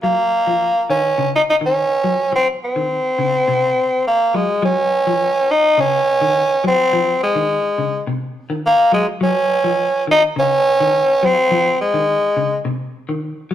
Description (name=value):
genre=afrobeat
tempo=105 BPM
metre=4/4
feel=straight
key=Eb dorian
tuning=A4 = 436 Hz
part: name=raspy tenor saxophone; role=melody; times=0.0-12.6 s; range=Ab3 to Eb4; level=-14 LUFS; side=equal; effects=none
part: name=clean electric guitar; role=arpeggios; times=0.0-13.5 s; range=C3 to Gb3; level=-24 LUFS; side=left 3 dB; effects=spring reverb
room=wet stone room reverb, RT60 1.1 s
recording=rough rehearsal-room recording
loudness=-14 LUFS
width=side -11 dB against mid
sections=0.0-4.6 A section; 4.6-13.5 B section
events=none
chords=0.0 Ebm9; 2.3 N.C.; 4.6 Ebm9; 6.9 Fm7; 9.2 Ebm9; 11.5 Fm7